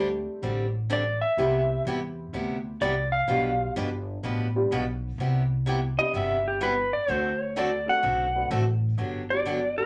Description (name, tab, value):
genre	country, western swing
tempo	126 BPM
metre	4/4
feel	swing 66% on 8ths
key	G major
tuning	A4 = 440 Hz
part	dark upright piano	accompaniment	0.0-9.9 s	G3 to B4	-33 LUFS	equal	none
part	picked steel-string acoustic guitar	accompaniment	0.0-9.6 s	B2 to B4	-34 LUFS	equal	none
part	upright bass	bass	0.0-9.7 s	G1 to E2	-32 LUFS	equal	none
part	clean lap steel guitar	melody	0.9-9.9 s	G4 to F#5	-28 LUFS	equal	none
room	wet small room reverb, RT60 0.5 s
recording	none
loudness	-27 LUFS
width	mono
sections	0.0-9.0 A section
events	electric slide guitar solo 0.0-9.0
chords	0.0 D7sus4; 1.4 Cmaj7; 3.3 G7; 5.2 Cmaj9; 7.1 D7; 9.0 Gmaj7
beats	0.43 0.91 | 1.38 1.86 2.34 2.81 | 3.29 3.76 4.24 4.71 | 5.19 5.67 6.14 6.62 | 7.09 7.57 8.04 8.52 | 9.00 9.47